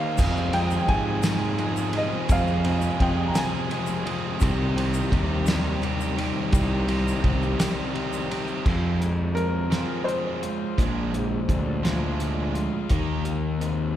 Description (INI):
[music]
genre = indie rock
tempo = 57 BPM (dotted quarters)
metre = 6/8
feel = straight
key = F dorian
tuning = A4 = 439 Hz
[part]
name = clear upright piano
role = melody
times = 0.0-4.1, 9.3-12.5 s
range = Bb4 to Bb5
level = -30 LUFS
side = right 1 dB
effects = none
[part]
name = metallic FM bell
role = second line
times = 0.0-4.1 s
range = C5 to G5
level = -42 LUFS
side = equal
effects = none
[part]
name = cranked stack guitar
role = riff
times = 0.0-13.9 s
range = Eb3 to Ab4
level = -31 LUFS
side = right 6 dB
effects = overdrive
[part]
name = crunchy overdriven guitar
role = riff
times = 0.0-14.0 s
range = F2 to Ab4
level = -28 LUFS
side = left 4 dB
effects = none
[part]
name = fuzz picked electric bass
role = bass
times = 0.2-14.0 s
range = Bb1 to Ab2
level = -27 LUFS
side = right 1 dB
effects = overdrive
[part]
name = cloth-damped thuddy drum kit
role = drums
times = 0.2-13.8 s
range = crash cymbal, hi-hat, kick drum, ride cymbal, snare drum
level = -27 LUFS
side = equal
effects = none
[part]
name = tube shaker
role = percussion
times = 0.2-8.6 s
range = none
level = -44 LUFS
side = left 7 dB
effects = none
[sound]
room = wet church reverb, RT60 2.7 s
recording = recorded in a church or concert hall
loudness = -22 LUFS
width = side -11 dB against mid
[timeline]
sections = 0.0-8.7 A section; 8.7-14.0 B section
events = none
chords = 0.2 Fm; 4.4 Cm; 8.7 Fm; 10.8 Bb7; 12.9 Eb6